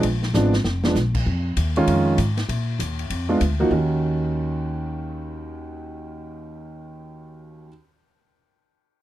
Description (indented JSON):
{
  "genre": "jazz piano trio",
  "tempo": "196 BPM",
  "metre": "4/4",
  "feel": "swing 62% on 8ths",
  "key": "Eb minor",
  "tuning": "A4 = 442 Hz",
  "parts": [
    { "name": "warm grand piano", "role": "melody", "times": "0.0-7.7 s", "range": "Eb2 to Gb4", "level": "-23 LUFS", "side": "right 2 dB", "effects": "none" },
    { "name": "upright bass", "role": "bass", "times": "0.0-7.6 s", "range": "F1 to Bb2", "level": "-24 LUFS", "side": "left 1 dB", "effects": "none" },
    { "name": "swinging big-band drum kit", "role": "drums", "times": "0.0-3.5 s", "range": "crash cymbal, hi-hat, kick drum, ride cymbal, snare drum", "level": "-30 LUFS", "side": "left 1 dB", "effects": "none" }
  ],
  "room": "light reverb",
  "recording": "dry, close 1970s-style studio recording",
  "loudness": "-20 LUFS",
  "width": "side -14 dB against mid",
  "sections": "0.0-1.3 A section; 1.3-3.7 B section; 3.7-6.2 C section",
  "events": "drum fill 0.3-1.0",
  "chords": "0.0 Bb7b9; 1.3 Eb9sus4; 2.5 Bb; 3.7 Ebm7"
}